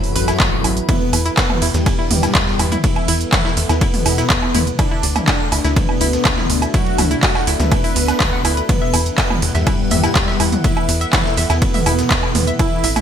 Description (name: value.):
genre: melodic techno.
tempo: 123 BPM.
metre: 4/4.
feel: straight.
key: E minor.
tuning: A4 = 440 Hz.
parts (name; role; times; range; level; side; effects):
mellow synth brass; melody; 0.0-12.9 s; F#2 to B4; -23 LUFS; left 1 dB; chorus, sidechain pumping, digital delay.
airy dreamy lead; second line; 0.0-12.9 s; F#4 to B5; -28 LUFS; right 1 dB; chorus, sidechain pumping, ping-pong delay.
dark analog pad; sustained chords; 0.0-13.0 s; E3 to D5; -28 LUFS; right 1 dB; chorus, sidechain pumping.
techno drum kit; drums; 0.0-13.0 s; handclaps, hi-hat, ride cymbal, toms, woodblock; -19 LUFS; right 2 dB; sidechain pumping on hats, sidechain pumping on toms, sidechain pumping on perc, sidechain pumping on cymbals, gated reverb.
warbly tape-like pad; texture; 0.0-13.0 s; D4 to B5; -30 LUFS; left 3 dB; chorus, built-in reverb, sidechain pumping.
warbly dusty pluck; arpeggios; 0.2-13.0 s; E4 to F#6; -26 LUFS; equal; chorus, sidechain pumping, ping-pong delay.
tight sequencer bass; bass; 0.2-13.0 s; A1 to E2; -20 LUFS; equal; sidechain pumping.
breakbeat sampler-style drum kit; drums; 0.2-13.0 s; hi-hat, ride cymbal, snare drum; -30 LUFS; right 1 dB; none.
electronic kick drum; drums; 0.4-12.7 s; none; -19 LUFS; equal; none.
room: light reverb.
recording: bright 1980s-style digital production.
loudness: -14 LUFS.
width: side -9 dB against mid.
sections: 0.0-13.0 A section.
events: none.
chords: 0.0 Am; 0.9 Em; 4.8 D; 8.7 Em.